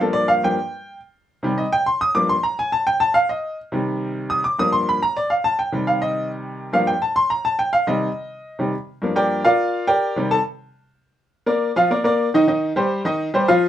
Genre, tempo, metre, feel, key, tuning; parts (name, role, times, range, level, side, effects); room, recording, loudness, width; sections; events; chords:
latin; 210 BPM; 4/4; straight; A4 = 443 Hz
bright upright piano; solo; 0.0-13.7 s; G2 to Eb6; -18 LUFS; equal
light reverb; minimal, uncompressed stereo recording; -18 LUFS; side -11 dB against mid
0.0-11.3 A section; 11.3-13.7 B section
upright piano solo 0.0-11.3
0.0 Gm7; 1.0 Cm; 2.1 Gm7; 3.3 Cm; 4.4 Gm7; 5.6 Cm; 6.7 Gm7; 7.9 Cm; 9.0 Gm7; 10.2 Cm; 11.3 Bbadd11; 12.5 Cm